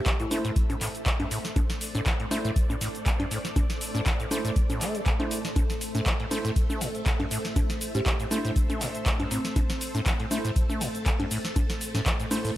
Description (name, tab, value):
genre	acid house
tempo	120 BPM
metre	4/4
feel	swing 55% on 16ths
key	A minor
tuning	A4 = 439 Hz
part	folk marimba with medium mallets	melody	0.0-0.4, 7.9-9.7 s	C4 to G4	-35 LUFS	right 1 dB	analog delay
part	string machine, full ensemble	sustained chords	0.0-12.6 s	A3 to A5	-35 LUFS	equal	ensemble chorus, sidechain pumping
part	acid bass, saw	riff	0.1-12.5 s	G2 to A3	-32 LUFS	equal	tube saturation, lush chorus, sidechain pumping, analog delay
part	booming analog drum machine	drums	0.1-12.5 s	congas, handclaps, hi-hat, shaker, snare drum	-31 LUFS	equal	none
part	electronic kick drum	drums	0.1-12.2 s	none	-26 LUFS	equal	none
part	overdriven tine electric piano	stabs	0.3-12.5 s	A3 to C5	-35 LUFS	right 3 dB	fast tremolo, analog delay
room	digital ambience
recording	none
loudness	-24 LUFS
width	side -14 dB against mid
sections	0.0-12.6 A section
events	none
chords	0.0 Am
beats	0.06 0.56 1.06 | 1.56 2.06 2.56 3.06 | 3.56 4.06 4.56 5.06 | 5.56 6.06 6.56 7.06 | 7.56 8.06 8.56 9.06 | 9.56 10.06 10.56 11.06 | 11.56 12.06 12.56